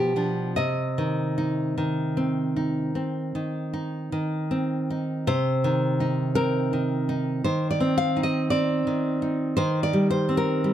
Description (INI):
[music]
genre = romantic piece for solo classical guitar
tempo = 48-57 BPM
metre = 4/4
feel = rubato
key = C minor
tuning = A4 = 441 Hz
[part]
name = nylon-string guitar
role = solo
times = 0.0-10.7 s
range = B2 to F5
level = -23 LUFS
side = equal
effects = none
[sound]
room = light reverb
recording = close, detailed microphones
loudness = -23 LUFS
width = side -10 dB against mid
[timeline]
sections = 0.0-5.3 A section; 5.3-10.7 A section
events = none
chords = 0.0 G7/B; 0.6 Cm; 9.6 Cm/Eb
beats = | 0.59 1.78 2.96 4.12 | 5.28 6.37 7.45 8.52 | 9.58 10.65